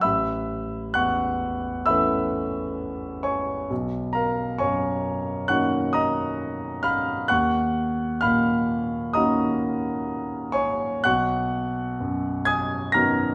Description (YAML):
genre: classical, impressionist solo piano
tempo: 65 BPM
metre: 4/4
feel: rubato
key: unclear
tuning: A4 = 441 Hz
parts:
  - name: clear concert grand piano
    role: solo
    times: 0.0-13.3 s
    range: A1 to A#6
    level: -24 LUFS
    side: equal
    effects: none
room: moderate recital hall reverb, RT60 1.3 s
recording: none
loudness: -25 LUFS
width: mono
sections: 0.0-13.3 A section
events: none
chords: 0.0 Aadd9; 3.7 Bmaj9; 7.3 D#m7; 11.1 Badd9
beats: | 0.03 0.95 1.87 2.79 | 3.70 4.61 5.50 6.40 | 7.30 8.23 9.15 10.06 | 11.05 12.00 12.93